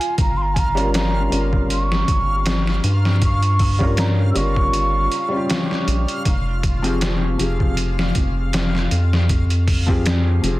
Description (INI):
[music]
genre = trip hop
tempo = 79 BPM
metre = 4/4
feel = swing 55% on 16ths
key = unclear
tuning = A4 = 441 Hz
[part]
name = mellow hollow wooden flute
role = melody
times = 0.0-5.9 s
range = Ab5 to E6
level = -25 LUFS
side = right 1 dB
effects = vintage 12-bit sampler grit, dub echo
[part]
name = felt-muted upright piano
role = accompaniment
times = 0.0-10.6 s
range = F3 to Bb4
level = -25 LUFS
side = left 1 dB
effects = harmonic tremolo, low-pass filter, tape echo
[part]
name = trip hop sampler-style drum kit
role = drums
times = 0.0-10.6 s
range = hi-hat, kick drum, snare drum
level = -21 LUFS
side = equal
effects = overdrive
[part]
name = backwards swelling texture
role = texture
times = 0.0-10.6 s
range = F4 to F5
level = -32 LUFS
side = right 1 dB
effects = built-in reverb
[part]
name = round analog bass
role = bass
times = 0.2-10.6 s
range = F1 to G2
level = -19 LUFS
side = equal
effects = none
[sound]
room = digital ambience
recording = dense, heavily limited modern master, vinyl crackle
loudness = -16 LUFS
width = side -18 dB against mid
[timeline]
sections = 0.0-10.6 A section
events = none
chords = 0.2 Gm7b5; 6.3 Fmadd9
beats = | 0.18 0.94 1.70 2.46 | 3.22 3.98 4.74 5.49 | 6.25 7.01 7.77 8.53 | 9.29 10.05